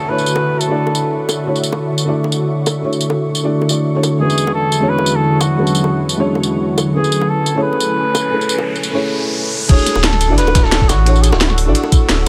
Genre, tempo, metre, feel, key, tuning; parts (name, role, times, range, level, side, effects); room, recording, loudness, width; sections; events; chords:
liquid drum and bass; 175 BPM; 4/4; swing 54% on 16ths; D lydian; A4 = 440 Hz
warm flugelhorn; melody; 0.0-1.3, 4.2-11.6 s; E4 to B4; -23 LUFS; equal; dub echo
felt-muted upright piano; accompaniment; 0.0-12.3 s; E2 to D5; -22 LUFS; equal; low-pass filter, tape echo
glassy FM pad; sustained chords; 0.0-12.3 s; D3 to E6; -22 LUFS; equal; ensemble chorus, built-in reverb
downlifter and riser; sound effects; 0.0-1.5, 8.0-9.7 s; -29 LUFS; equal
drum and bass drum kit; drums; 0.2-12.2 s; crash cymbal, hi-hat, snare drum, tambourine; -22 LUFS; equal; studio reverb
bongos; percussion; 0.4-11.9 s; -24 LUFS; equal
sub bass with octave; bass; 9.7-12.3 s; D1 to A1; -17 LUFS; equal
dusty soul sampler-style drum kit; drums; 9.7-12.2 s; ride cymbal, snare drum; -27 LUFS; equal; high-pass filter on cymbals, studio reverb, high-pass filter on snare
electronic kick drum; drums; 9.7-12.0 s; -14 LUFS; equal; studio reverb
light reverb; -15 LUFS; mono
0.0-9.7 A section; 9.7-12.3 B section
riser 8.0-9.7; drop 9.7-12.3
0.0 Dmaj9; 4.2 E13; 6.9 Amaj9; 9.7 Dmaj9